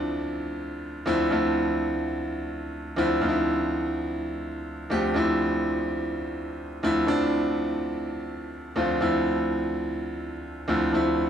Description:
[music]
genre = disco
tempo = free time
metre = none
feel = none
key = D minor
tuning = A4 = 440 Hz
[part]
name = clear grand piano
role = solo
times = 0.0-11.3 s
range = D2 to G4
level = -24 LUFS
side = equal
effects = none
[sound]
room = wet large studio reverb, RT60 0.9 s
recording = band playing live in one room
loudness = -24 LUFS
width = side -8 dB against mid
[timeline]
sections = 0.0-11.3 A section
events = none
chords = 0.0 Dm9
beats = free time

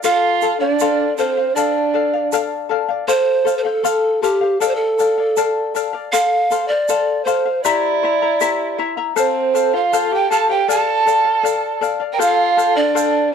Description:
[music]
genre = andean folk, Andean ensemble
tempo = 79 BPM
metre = 2/4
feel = straight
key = unclear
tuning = A4 = 440 Hz
[part]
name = breathy mellow pan flute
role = melody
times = 0.0-13.3 s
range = G4 to A5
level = -17 LUFS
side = right 1 dB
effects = none
[part]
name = dark violin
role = second line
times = 0.0-2.3, 7.6-13.3 s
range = C4 to Bb4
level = -22 LUFS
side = right 14 dB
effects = none
[part]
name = charango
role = accompaniment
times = 0.0-13.3 s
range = E4 to Bb5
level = -20 LUFS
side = left 10 dB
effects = none
[part]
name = tube shaker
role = percussion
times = 0.0-13.1 s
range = none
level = -30 LUFS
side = right 19 dB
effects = none
[sound]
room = light reverb, studio reverb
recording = 1960s-style stereo with parts hard left and right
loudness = -15 LUFS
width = side -7 dB against mid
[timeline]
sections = 0.0-3.1 A section; 3.1-13.3 A section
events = none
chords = 0.0 F; 1.6 Dm; 3.1 F; 4.6 Dm; 6.1 F; 7.6 C7; 9.2 F; 10.7 Dm; 12.2 F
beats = | 0.04 0.80 | 1.56 2.32 | 3.08 3.85 | 4.61 5.37 | 6.13 6.89 | 7.65 8.41 | 9.17 9.93 | 10.69 11.45 | 12.21 12.97

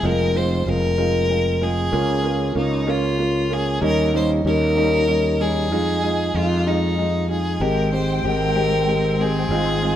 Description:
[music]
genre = six-eight pop ballad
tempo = 63 BPM (dotted quarters)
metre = 6/8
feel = straight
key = F minor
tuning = A4 = 440 Hz
[part]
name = rich violin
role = melody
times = 0.0-10.0 s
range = Eb4 to C5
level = -23 LUFS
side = left 1 dB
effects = none
[part]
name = dark upright piano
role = accompaniment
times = 0.0-10.0 s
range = G3 to G4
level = -22 LUFS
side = right 1 dB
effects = none
[part]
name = sustaining fretless electric bass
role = bass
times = 0.0-10.0 s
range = F1 to F2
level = -22 LUFS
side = equal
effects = none
[part]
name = dark studio string section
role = sustained chords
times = 7.6-10.0 s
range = Ab3 to G5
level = -26 LUFS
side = left 1 dB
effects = none
[sound]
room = wet stone room reverb, RT60 1.5 s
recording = band playing live in one room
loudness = -18 LUFS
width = side -10 dB against mid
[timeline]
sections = 0.0-10.0 A section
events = none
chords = 0.0 Fm; 1.9 Db6; 3.8 Eb7; 5.7 Fm7; 7.6 Abmaj7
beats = | 0.03 0.98 | 1.93 2.87 | 3.82 4.77 | 5.71 6.66 | 7.61 8.55 | 9.50

